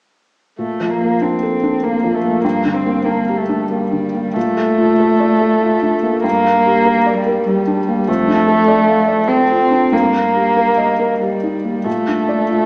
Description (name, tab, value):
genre	neoclassical piano and strings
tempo	96 BPM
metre	3/4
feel	uneven beats, rubato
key	Bb major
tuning	A4 = 440 Hz
part	warm cello	second line	0.6-12.7 s	G3 to C4	-15 LUFS	equal	none
part	felt-muted upright piano	accompaniment	0.6-12.7 s	F2 to F5	-16 LUFS	equal	none
room	wet recital hall reverb, RT60 1.5 s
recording	recorded in a church or concert hall, small speaker sound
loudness	-12 LUFS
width	side -27 dB against mid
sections	0.6-4.4 A section; 4.4-12.7 B section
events	none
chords	0.6 Bbmaj7; 2.4 Gm; 4.4 Bbmaj7; 6.2 Gm; 8.1 Dm/F; 9.9 Eb/G; 11.9 Bbmaj7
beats	| 0.59 1.22 1.83 | 2.44 3.06 3.70 | 4.36 4.99 5.61 | 6.24 6.86 7.47 | 8.08 8.67 9.28 | 9.92 10.56 11.21 | 11.86 12.49